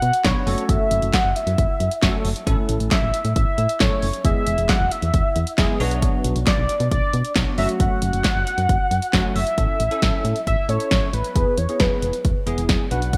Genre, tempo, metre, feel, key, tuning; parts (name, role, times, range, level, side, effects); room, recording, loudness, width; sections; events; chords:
synth-pop; 135 BPM; 4/4; straight; A major; A4 = 440 Hz
warm velvety synth lead; melody; 0.0-13.2 s; B4 to F#5; -26 LUFS; equal; chorus, digital delay
solid FM bass; bass; 0.0-13.2 s; E1 to B2; -26 LUFS; equal
punchy analog drum machine; drums; 0.0-13.2 s; handclaps, hi-hat, kick drum, snare drum; -24 LUFS; equal; gated reverb
barky tine electric piano; accompaniment; 0.2-13.2 s; F#3 to B4; -30 LUFS; equal; ensemble chorus
light reverb, digital ambience; bright 1980s-style digital production; -20 LUFS; mono
0.0-9.6 A section; 9.6-13.2 B section
0.5 F#m; 2.5 A; 4.2 E; 5.8 Bm; 7.6 F#m; 9.6 A; 11.4 E